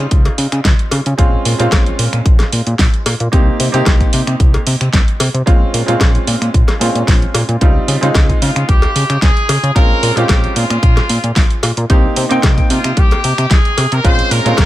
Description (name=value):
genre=nu-disco, nu disco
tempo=112 BPM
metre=4/4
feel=straight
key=Bb dorian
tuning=A4 = 440 Hz
part: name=bright baby grand piano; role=accompaniment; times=0.0-14.7 s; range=G3 to G5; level=-20 LUFS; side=right 1 dB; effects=vintage 12-bit sampler grit, ping-pong delay
part: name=fat analog bass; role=bass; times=0.0-14.7 s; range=Bb1 to Db3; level=-16 LUFS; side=equal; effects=none
part: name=electronic kick drum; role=drums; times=0.1-14.7 s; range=none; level=-12 LUFS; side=equal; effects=none
part: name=pop drum kit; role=drums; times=0.1-14.7 s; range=finger snaps, hi-hat, snare drum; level=-19 LUFS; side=equal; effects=none
part: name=cowbell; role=percussion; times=0.3-14.7 s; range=none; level=-22 LUFS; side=left 3 dB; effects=none
part: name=clear trumpet section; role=melody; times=8.4-14.7 s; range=F4 to C5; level=-18 LUFS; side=left 1 dB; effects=vintage 12-bit sampler grit, dub echo
room=small room ambience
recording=none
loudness=-10 LUFS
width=side -15 dB against mid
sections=0.0-14.7 A section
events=none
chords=0.0 Dbmaj9#11; 1.2 Bbm9; 3.3 Cm7; 5.5 Bbm9; 7.6 Dbmaj9#11; 9.8 Bbm9; 11.9 Cm7; 14.0 Bbm9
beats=0.11 0.65 | 1.19 1.72 2.26 2.79 | 3.33 3.86 4.40 4.93 | 5.47 6.01 6.54 7.08 | 7.61 8.15 8.69 9.22 | 9.76 10.29 10.83 11.36 | 11.90 12.44 12.97 13.51 | 14.04 14.58